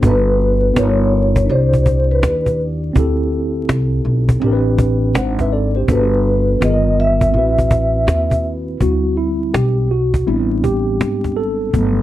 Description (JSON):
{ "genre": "hip hop, jazz-hop", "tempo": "82 BPM", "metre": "4/4", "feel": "swing 65% on 16ths", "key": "A dorian", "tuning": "A4 = 440 Hz", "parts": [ { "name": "mellow tine electric piano", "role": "accompaniment", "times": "0.0-12.0 s", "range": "D#3 to F#5", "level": "-19 LUFS", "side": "equal", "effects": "medium stereo tremolo" }, { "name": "upright bass", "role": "bass", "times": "0.0-12.0 s", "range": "G1 to D#2", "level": "-17 LUFS", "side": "equal", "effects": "none" }, { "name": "cajon", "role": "drums", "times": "0.0-12.0 s", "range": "none", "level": "-18 LUFS", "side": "equal", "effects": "none" }, { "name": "vibraphone with soft mallets", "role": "melody", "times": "0.1-8.4 s", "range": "B4 to E5", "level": "-17 LUFS", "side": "equal", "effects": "none" } ], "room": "little or no reverb", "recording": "dry, close 1970s-style studio recording, vinyl crackle", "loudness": "-14 LUFS", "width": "side -14 dB against mid", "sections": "0.0-8.8 A section; 8.8-12.0 B section", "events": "tine electric piano solo 8.8-12.0", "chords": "0.0 Gmaj9; 0.8 G7alt; 1.5 Cadd9; 3.0 D7sus4; 4.4 Am11; 5.9 Gmaj9; 6.6 G7alt; 7.3 Am69; 8.8 D7sus4; 10.3 Am11" }